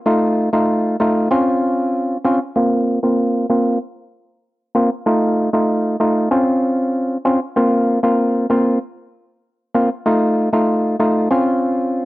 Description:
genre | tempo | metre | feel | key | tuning
dancehall | 96 BPM | 4/4 | straight | Bb minor | A4 = 440 Hz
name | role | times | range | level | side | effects
percussive organ stab | solo | 0.1-12.1 s | A3 to F4 | -15 LUFS | equal | chorus, low-pass filter, cassette tape
room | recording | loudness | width
light reverb | home recording on cassette, nothing above 10.9 kHz | -15 LUFS | side -18 dB against mid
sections
0.0-2.6 A section; 2.6-12.1 B section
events
filter sweep on synth stab 2.6-12.1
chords
0.1 F7; 1.3 Dbmaj7; 2.6 Bbsus2; 5.1 F7; 6.3 Dbmaj7; 7.6 Bbsus2; 10.1 F7; 11.3 Dbmaj7

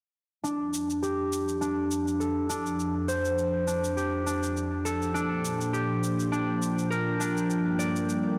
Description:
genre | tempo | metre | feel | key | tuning
sunset chillout | 102 BPM | 4/4 | swing 55% on 16ths | F major | A4 = 439 Hz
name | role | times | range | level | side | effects
lush unison pad | sustained chords | 0.4-8.4 s | F2 to G5 | -33 LUFS | equal | chorus
concert harp | arpeggios | 0.4-8.4 s | D4 to D5 | -30 LUFS | equal | low-pass filter, digital delay
cabasa | drums | 0.4-8.2 s | none | -42 LUFS | equal | none
room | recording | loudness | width
moderate lush hall reverb, RT60 3.1 s | blown-out, overdriven recording, overdrive | -29 LUFS | mono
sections
0.4-8.4 A section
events
filter sweep on analog synth pad 0.4-8.4; filter sweep on harp 0.4-8.4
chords
0.4 F69; 5.1 Bb69; 7.5 Gm7

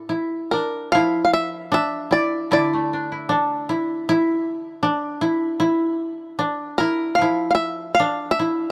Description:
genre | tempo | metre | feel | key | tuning
japanese traditional | 77 BPM | 2/4 | uneven beats, rubato | unclear | A4 = 440 Hz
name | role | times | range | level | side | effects
bluegrass banjo | melody | 0.0-3.7, 6.8-8.7 s | A4 to F5 | -23 LUFS | equal | none
koto | second line | 0.0-8.7 s | D4 to E4 | -24 LUFS | equal | none
koto | accompaniment | 0.0-8.7 s | A2 to A4 | -32 LUFS | equal | none
room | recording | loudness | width
light reverb | close, detailed microphones | -22 LUFS | mono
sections
0.9-8.7 A section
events
none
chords
none

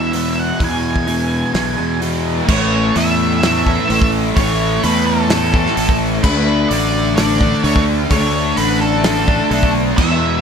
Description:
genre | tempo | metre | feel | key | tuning
rock, shoegaze and dream pop | 128 BPM | 4/4 | straight | A major | A4 = 441 Hz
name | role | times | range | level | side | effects
octave-fuzz lead guitar | melody | 0.0-10.4 s | A4 to G#5 | -21 LUFS | right 1 dB | distortion, slapback echo
fuzz guitar | riff | 0.0-10.4 s | E2 to D4 | -17 LUFS | left 1 dB | distortion, analog chorus
growling fingered electric bass | bass | 0.0-10.4 s | A1 to E2 | -20 LUFS | equal | overdrive
loose indie drum kit | drums | 0.1-10.1 s | crash cymbal, hi-hat, kick drum, snare drum | -20 LUFS | equal | none
room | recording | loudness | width
little or no reverb | none | -13 LUFS | side -6 dB against mid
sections
0.0-2.5 A section; 2.5-10.4 B section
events
none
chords
0.0 E; 2.5 A; 6.2 D5

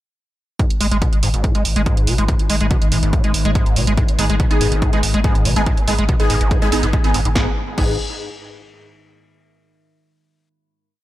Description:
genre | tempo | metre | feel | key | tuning
driving peak-time techno | 142 BPM | 4/4 | straight | G# minor | A4 = 440 Hz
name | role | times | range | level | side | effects
overdriven acid bass | riff | 0.6-8.0 s | G#1 to G#3 | -22 LUFS | equal | ensemble chorus, cassette tape, sidechain pumping, tape echo
metallic inharmonic drone | drone | 1.7-7.4 s | G#2 to D#3 | -28 LUFS | left 1 dB | chorus, built-in reverb, sidechain pumping
electronic kick drum | drums | 0.6-7.9 s | none | -18 LUFS | equal | none
punchy analog drum machine | drums | 0.6-7.9 s | crash cymbal, hi-hat, snare drum | -24 LUFS | right 3 dB | sidechain pumping on hats, sidechain pumping on cymbals
warm sub bass | bass | 0.7-8.0 s | G#1 | -21 LUFS | equal | tube saturation, sidechain pumping, low-pass filter
rave stab | stabs | 4.2-7.9 s | B3 to G#4 | -22 LUFS | equal | chorus, built-in reverb, phaser, sidechain pumping, tape echo
room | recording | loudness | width
light reverb, digital ambience | echo-heavy mix | -15 LUFS | side -15 dB against mid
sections
0.6-7.4 groove; 7.4-9.0 final chord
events
none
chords
0.6 G#m

